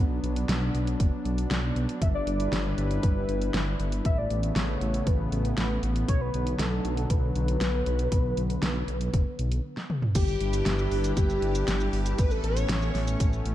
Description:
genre	synthwave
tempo	118 BPM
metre	4/4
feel	straight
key	B minor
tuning	A4 = 439 Hz
part	warm analog pad	sustained chords	0.0-13.5 s	C#3 to B4	-33 LUFS	equal	chorus, sidechain pumping
part	dark detuned saw bass	bass	0.0-13.5 s	F#1 to B1	-28 LUFS	equal	tube saturation, sidechain pumping
part	pop drum kit	drums	0.2-13.5 s	crash cymbal, hi-hat, shaker, snare drum, toms	-32 LUFS	equal	none
part	electronic kick drum	drums	1.0-13.3 s	none	-25 LUFS	equal	overdrive
part	warm velvety synth lead	melody	2.0-13.2 s	G4 to E5	-33 LUFS	left 1 dB	chorus, ping-pong delay
part	string machine, violins	second line	10.2-13.2 s	G4 to C#5	-37 LUFS	left 1 dB	ensemble chorus, ping-pong delay
room	light reverb, digital ambience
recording	dark, warm production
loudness	-24 LUFS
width	side -13 dB against mid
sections	0.0-10.2 A section; 10.2-13.5 B section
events	break 9.6-10.2; drum fill 9.8-10.2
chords	0.0 Bm; 2.0 G6; 4.0 Aadd9; 6.1 Bm; 10.2 G6; 12.2 Aadd9

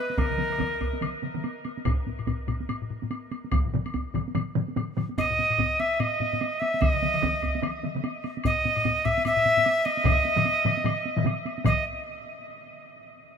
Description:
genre	japanese traditional, taiko drum ensemble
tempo	147 BPM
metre	4/4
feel	swing 60% on 16ths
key	unclear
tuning	A4 = 440 Hz
part	breathy bright alto recorder	melody	0.0-1.0, 5.2-11.8 s	Bb4 to Fb5	-25 LUFS	right 1 dB	none
part	solo taiko drums	percussion	0.1-11.8 s	none	-34 LUFS	right 2 dB	none
part	taiko ensemble	percussion	0.2-12.0 s	none	-31 LUFS	equal	none
part	taiko ensemble	percussion	0.2-11.8 s	none	-29 LUFS	equal	none
part	woodblock	percussion	0.2-11.8 s	none	-39 LUFS	left 3 dB	none
part	solo taiko drums	percussion	1.9-12.0 s	none	-30 LUFS	left 4 dB	none
room	moderate huge ambient reverb, RT60 8.0 s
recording	minimal, uncompressed stereo recording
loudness	-23 LUFS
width	side -7 dB against mid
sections	0.0-11.7 A section; 11.7-13.2 B section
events	speeding up 0.0-13.2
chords	none

